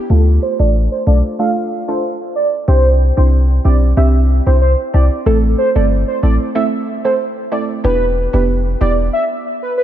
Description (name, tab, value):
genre	dancehall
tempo	93 BPM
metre	4/4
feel	straight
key	D dorian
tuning	A4 = 440 Hz
part	warm velvety synth lead	melody	0.1-9.8 s	A4 to F5	-18 LUFS	right 1 dB	chorus, low-pass filter, analog delay
part	soft round pluck	accompaniment	0.1-9.0 s	A3 to A4	-20 LUFS	right 3 dB	chorus, low-pass filter
part	warm 808-style bass	bass	0.1-9.1 s	E1 to D2	-12 LUFS	equal	none
room	light reverb, digital ambience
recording	none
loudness	-12 LUFS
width	side -11 dB against mid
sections	0.1-9.8 A section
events	filter sweep 0.1-9.8; stop 9.1-9.8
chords	0.1 Dm; 2.7 Cadd9; 5.3 Am; 7.8 Em7